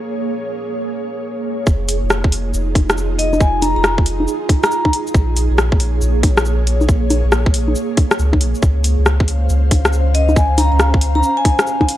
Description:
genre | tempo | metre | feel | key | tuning
future garage | 138 BPM | 4/4 | swing 65% on 16ths | F minor | A4 = 441 Hz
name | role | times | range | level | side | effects
ethereal airy pad | sustained chords | 0.0-12.0 s | Bb3 to F5 | -23 LUFS | right 2 dB | ensemble chorus, built-in reverb, vintage 12-bit sampler grit, sidechain pumping
soft dub sub bass | bass | 1.7-11.2 s | F1 to Db2 | -16 LUFS | equal | sidechain pumping
electronic kick drum | drums | 1.7-11.9 s | none | -14 LUFS | equal | studio reverb
garage drum kit | drums | 1.7-12.0 s | bongos, hi-hat, rim click, shaker | -18 LUFS | left 1 dB | studio reverb
vibraphone with medium hard mallets | melody | 3.2-4.9, 10.1-11.8 s | Eb5 to Bb5 | -20 LUFS | left 2 dB | tape echo
room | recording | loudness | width
digital ambience | dry, gritty hardware recording | -13 LUFS | side -13 dB against mid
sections
0.0-1.7 A section; 1.7-12.0 B section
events
none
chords
0.0 Bbm7; 1.7 Fm7; 5.1 Bbm7; 8.6 Dbmaj7

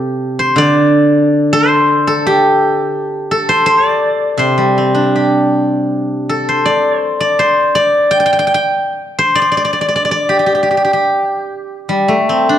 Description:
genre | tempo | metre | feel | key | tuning
chinese traditional, Chinese solo plucked strings | 74-86 BPM | 2/4 | rubato | unclear | A4 = 440 Hz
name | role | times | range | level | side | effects
steel-string zither | solo | 0.0-12.6 s | C3 to G5 | -11 LUFS | equal | none
room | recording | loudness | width
moderate scoring stage reverb, RT60 1.6 s | dark, warm production | -11 LUFS | side -10 dB against mid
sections
0.0-11.9 A section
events
none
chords
none

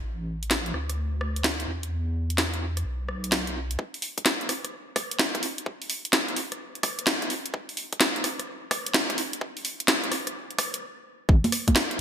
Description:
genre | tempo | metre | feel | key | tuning
UK garage, two-step garage | 128 BPM | 4/4 | swing 66% on 16ths | unclear | A4 = 441 Hz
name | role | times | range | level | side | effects
deep soft wobble bass | bass | 0.0-3.8, 11.3-11.4 s | A1 to E2 | -29 LUFS | equal | chorus
garage drum kit | drums | 0.4-12.0 s | congas, hi-hat, rim click, snare drum | -25 LUFS | equal | gated reverb
electronic kick drum | drums | 3.8-11.7 s | none | -23 LUFS | equal | high-pass filter on kick
room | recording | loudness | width
moderate lush hall reverb, RT60 2.0 s | bright 1980s-style digital production | -24 LUFS | side -8 dB against mid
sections
0.0-3.8 A section; 3.8-11.3 B section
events
build-up 3.8-11.3; stop 10.8-11.3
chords
none

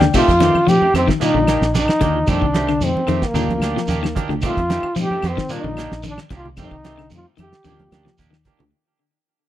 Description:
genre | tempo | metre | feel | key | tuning
afrobeat | 112 BPM | 4/4 | straight | F mixolydian | A4 = 440 Hz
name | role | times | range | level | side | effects
overdriven reed electric piano | accompaniment | 0.0-8.6 s | G3 to G5 | -25 LUFS | left 7 dB | fast tremolo
electric guitar at the edge of break-up | arpeggios | 0.0-8.7 s | D3 to F3 | -24 LUFS | left 8 dB | tape echo
semi-hollow electric guitar | stabs | 0.0-8.6 s | Eb3 to G4 | -27 LUFS | right 7 dB | wide subtle chorus, tape echo
fingered electric bass | bass | 0.0-8.7 s | Bb1 to F3 | -22 LUFS | equal | none
damped 70s drum kit | drums | 0.0-8.7 s | crash cymbal, hi-hat, kick drum, snare drum | -23 LUFS | right 1 dB | none
congas | percussion | 0.0-8.7 s | none | -26 LUFS | right 4 dB | none
claves | percussion | 0.1-8.5 s | none | -35 LUFS | left 5 dB | none
shekere | percussion | 0.1-8.6 s | none | -30 LUFS | right 3 dB | none
breathy trombone | melody | 0.2-8.2 s | Bb3 to G4 | -19 LUFS | equal | none
room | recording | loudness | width
studio reverb | dry, close 1970s-style studio recording | -15 LUFS | side -13 dB against mid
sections
0.1-8.7 A section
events
fade-out 0.1-8.7; drum fill 7.7-8.7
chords
0.1 F9; 1.2 Ebmaj7; 2.3 F9; 3.4 Ebmaj7; 4.4 F9; 5.5 Ebmaj7; 6.6 F9; 7.7 Ebmaj7

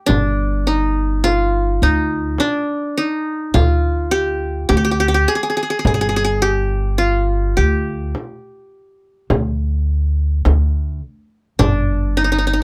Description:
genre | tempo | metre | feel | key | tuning
Arabic maqam ensemble | 104 BPM (eighths) | 10/8 | straight | G maqam hijaz | A4 = 437 Hz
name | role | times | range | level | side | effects
qanun | melody | 0.0-12.6 s | D4 to Ab4+25c | -21 LUFS | equal | none
upright bass | bass | 0.1-12.6 s | G1 to D2 | -20 LUFS | equal | none
frame drum | percussion | 0.1-11.9 s | none | -24 LUFS | equal | none
darbuka | percussion | 11.6-11.9 s | none | -25 LUFS | equal | none
room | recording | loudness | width
little or no reverb | close, detailed microphones | -18 LUFS | mono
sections
0.0-12.6 A section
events
none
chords
none

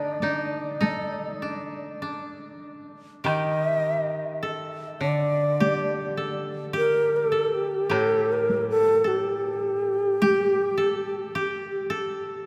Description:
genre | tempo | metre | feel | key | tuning
japanese traditional, Japanese chamber music | 52 BPM | 4/4 | rubato | D miyako bushi | A4 = 440 Hz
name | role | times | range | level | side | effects
reedy long shakuhachi | melody | 0.0-11.9 s | G4 to Eb5 | -27 LUFS | equal | none
koto | second line | 0.0-12.5 s | D4 to A4 | -34 LUFS | equal | none
koto | accompaniment | 0.0-11.3 s | A2 to A4 | -35 LUFS | equal | none
taiko ensemble | percussion | 0.2-10.5 s | none | -35 LUFS | equal | none
room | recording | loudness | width
wet cathedral reverb, RT60 4.8 s | none | -25 LUFS | mono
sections
0.0-3.3 A section; 3.3-12.5 B section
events
none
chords
none

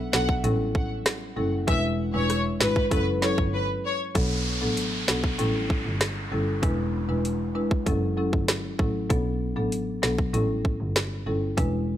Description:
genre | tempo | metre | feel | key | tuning
dancehall | 97 BPM | 4/4 | straight | B minor | A4 = 440 Hz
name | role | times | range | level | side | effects
clear studio violin section | melody | 0.1-4.0 s | B4 to F#5 | -30 LUFS | left 2 dB | tape echo
marimba with medium mallets | accompaniment | 0.1-12.0 s | F#3 to B4 | -28 LUFS | left 1 dB | none
rich double bass | bass | 0.1-11.9 s | E1 to B1 | -29 LUFS | equal | none
island pop drum kit | drums | 0.1-11.7 s | hi-hat, kick drum, rim click, snare drum | -25 LUFS | equal | overdrive
downlifter | sound effects | 4.2-9.1 s | none | -34 LUFS | right 1 dB | none
room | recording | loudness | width
studio reverb | dry, gritty hardware recording, transformer saturation | -23 LUFS | side -12 dB against mid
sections
0.0-4.2 A section; 4.2-12.0 B section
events
break 3.5-4.2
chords
0.4 A7; 1.7 E7; 2.9 F#m7; 4.2 Bm7; 5.4 A7; 6.6 E7; 7.9 F#m7; 9.1 Bm7; 10.3 A7

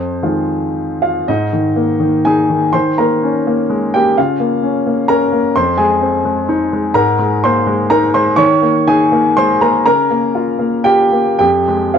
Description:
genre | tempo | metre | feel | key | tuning
neoclassical minimalist piano | 106-131 BPM | 3/4 | rubato | Ab major | A4 = 442 Hz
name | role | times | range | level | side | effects
warm grand piano | solo | 0.0-12.0 s | F2 to Db6 | -12 LUFS | equal | none
room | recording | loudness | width
moderate small room ambience, RT60 0.5 s | worn, warbling old tape, cassette tape, warbly pitch drift | -11 LUFS | side -7 dB against mid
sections
0.0-1.3 A section; 1.3-12.0 B section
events
none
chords
0.0 Fm7; 1.3 Absus2; 2.7 Eb7sus4; 4.2 Bbm/Db; 5.6 Fm7; 7.0 Absus2; 8.4 Eb7sus4; 9.9 Bbm/Db; 11.4 Fm

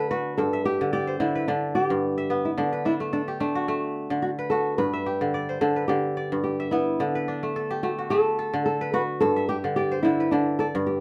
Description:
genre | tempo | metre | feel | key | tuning
west african traditional | 109 BPM | 4/4 | swing 54% on 16ths | G major | A4 = 437 Hz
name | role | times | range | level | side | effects
flamenco guitar | melody | 0.0-11.0 s | D4 to B4 | -28 LUFS | equal | none
kora | arpeggios | 0.0-11.0 s | G2 to E5 | -28 LUFS | equal | none
room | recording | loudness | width
light reverb | none | -25 LUFS | mono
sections
0.0-11.0 A section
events
none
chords
0.4 G; 2.6 D; 4.8 G; 7.0 D; 9.2 G

